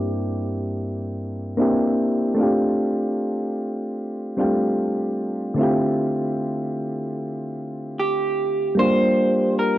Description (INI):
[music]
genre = hip hop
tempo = 75 BPM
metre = 4/4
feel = swing 56% on 16ths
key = G dorian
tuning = A4 = 441 Hz
[part]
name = electric guitar through a small old amp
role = melody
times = 0.0-1.9, 8.0-9.8 s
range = G4 to C5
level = -22 LUFS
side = right 1 dB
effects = low-pass filter, cassette tape
[part]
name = soft electric-piano-like synth keys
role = accompaniment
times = 0.0-9.8 s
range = G2 to G4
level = -21 LUFS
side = equal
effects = chorus, low-pass filter, cassette tape
[sound]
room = moderate studio reverb, RT60 0.6 s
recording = home recording on cassette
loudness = -20 LUFS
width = side -14 dB against mid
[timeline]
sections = 0.0-8.8 A section; 8.8-9.8 B section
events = filter sweep 0.0-8.8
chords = 0.0 C9/G; 1.6 C9; 2.4 F69; 5.6 Dm11; 8.8 Gm7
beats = 0.78 1.57 | 2.38 3.17 3.98 4.78 | 5.58 6.38 7.17 7.97 | 8.78 9.57